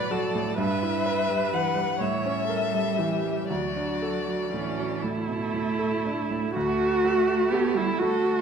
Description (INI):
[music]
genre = classical, slow romantic movement for piano quartet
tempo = 38-43 BPM (dotted quarters)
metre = 6/8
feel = rubato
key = D major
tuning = A4 = 440 Hz
[part]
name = dark violin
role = melody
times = 0.0-8.4 s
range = A4 to F#5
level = -30 LUFS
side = left 8 dB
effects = none
[part]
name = rich cello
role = second line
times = 0.0-8.4 s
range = E3 to B3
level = -30 LUFS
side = right 6 dB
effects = none
[part]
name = clear grand piano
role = accompaniment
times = 0.0-8.4 s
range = D2 to D5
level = -30 LUFS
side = right 1 dB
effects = none
[part]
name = warm viola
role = accompaniment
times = 0.0-8.4 s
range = C#4 to C#5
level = -28 LUFS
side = right 2 dB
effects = none
[sound]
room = wet recital hall reverb, RT60 1.5 s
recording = none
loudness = -23 LUFS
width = side -7 dB against mid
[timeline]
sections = 0.0-6.5 A section; 6.5-8.4 A section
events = none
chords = 0.0 D; 0.6 Em/G; 2.0 A7b9; 3.5 D